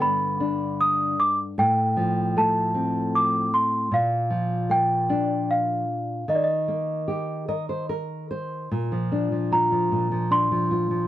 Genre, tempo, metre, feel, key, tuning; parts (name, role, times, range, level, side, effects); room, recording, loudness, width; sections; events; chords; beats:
children's music, lullaby; 76 BPM; 3/4; rubato; A4 = 440 Hz
celesta; melody; 0.0-11.1 s; D5 to Eb6; -23 LUFS; right 1 dB
nylon-string guitar; accompaniment; 0.0-11.1 s; G2 to Eb5; -25 LUFS; left 1 dB
little or no reverb; dry, close 1970s-style studio recording; -21 LUFS; side -13 dB against mid
0.0-8.7 A section; 8.7-11.1 B section
nylon-string guitar fill 7.1-8.7
0.0 G; 1.6 F/A; 3.9 Bb; 6.3 Eb; 8.7 Bbadd9
0.00 0.79 | 1.58 2.36 3.13 | 3.91 4.70 5.48 | 6.27 7.07 7.89 | 8.71 9.51 10.31